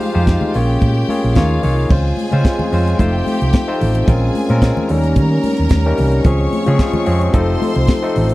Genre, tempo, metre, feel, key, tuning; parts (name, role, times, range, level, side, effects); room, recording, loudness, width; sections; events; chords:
disco; 110 BPM; 4/4; straight; A4 = 440 Hz
clear studio string section; second line; 0.0-8.3 s; F4 to Db6; -26 LUFS; equal
barky tine electric piano; accompaniment; 0.0-8.3 s; F3 to Db5; -19 LUFS; left 2 dB; overdrive
warm French horn section; sustained chords; 0.0-8.3 s; C3 to A4; -24 LUFS; right 2 dB
tight funk drum kit; drums; 0.0-8.3 s; crash cymbal, hi-hat, kick drum, snare drum; -15 LUFS; equal
hollow-body short-scale fingered electric bass; bass; 0.2-8.3 s; F1 to Eb3; -16 LUFS; right 1 dB
congas; percussion; 0.3-8.3 s; -24 LUFS; left 3 dB
little or no reverb; dry, close 1970s-style studio recording; -13 LUFS; side -18 dB against mid
0.0-1.9 A section; 1.9-8.3 B section
0.0 Fm9; 0.5 Bbm7; 1.4 Eb9sus4; 1.9 Dbmaj7; 3.0 F7; 4.1 Bbm9; 4.9 Eb7; 6.3 Dbmaj7; 7.3 F7